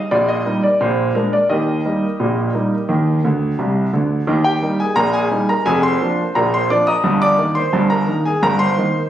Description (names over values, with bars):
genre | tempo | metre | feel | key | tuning
ragtime piano | 87 BPM | 2/4 | straight | Eb major | A4 = 440 Hz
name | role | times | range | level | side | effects
clear concert grand piano | solo | 0.0-9.1 s | F1 to Eb6 | -15 LUFS | equal | none
room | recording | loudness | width
moderate studio reverb, RT60 0.5 s | recorded on a phone in the room, studio reverb | -15 LUFS | side -11 dB against mid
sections
0.0-4.3 A section; 4.3-9.1 B section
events
grand piano fill 3.2-4.3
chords
0.1 Eb/Bb; 0.8 Bb7; 1.5 Eb; 5.7 Bb7/F; 7.0 Eb/G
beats
| 0.11 0.80 | 1.49 2.19 | 2.89 3.58 | 4.28 4.97 | 5.66 6.35 | 7.04 7.73 | 8.42